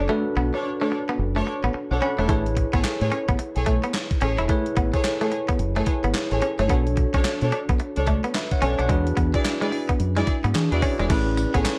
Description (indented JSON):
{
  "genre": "R&B, new jack swing",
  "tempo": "109 BPM",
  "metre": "4/4",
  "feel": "swing 62% on 16ths",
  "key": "A major",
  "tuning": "A4 = 435 Hz",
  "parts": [
    { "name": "bell-like tine electric piano", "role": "accompaniment", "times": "0.0-11.8 s", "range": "C#4 to B5", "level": "-30 LUFS", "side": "equal", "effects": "none" },
    { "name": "direct-recorded clean electric guitar", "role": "riff", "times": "0.0-11.7 s", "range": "G#3 to E4", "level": "-30 LUFS", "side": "equal", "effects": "lush chorus" },
    { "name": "deep dub fingered electric bass", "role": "bass", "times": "0.0-11.7 s", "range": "E1 to E3", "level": "-27 LUFS", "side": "equal", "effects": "none" },
    { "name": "warm symphonic string section", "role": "stabs", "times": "0.5-11.7 s", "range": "D4 to D5", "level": "-31 LUFS", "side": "equal", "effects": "none" },
    { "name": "gated 80s digital drum machine", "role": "drums", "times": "2.3-11.8 s", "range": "crash cymbal, handclaps, hi-hat, kick drum, snare drum, tambourine", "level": "-27 LUFS", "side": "equal", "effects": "gated reverb, gated reverb snare" }
  ],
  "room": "moderate studio ambience, RT60 0.5 s",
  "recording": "dark, warm production",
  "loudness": "-23 LUFS",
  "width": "mono",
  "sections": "0.0-11.1 A section",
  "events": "none",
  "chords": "0.0 Bm9; 2.3 Amaj7; 6.7 Bm9; 8.9 E7; 11.1 Amaj7",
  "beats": "| 0.09 0.64 1.19 1.74 | 2.29 2.84 3.39 3.94 | 4.49 5.04 5.59 6.15 | 6.70 7.25 7.80 8.35 | 8.90 9.45 10.00 10.55 | 11.10 11.65"
}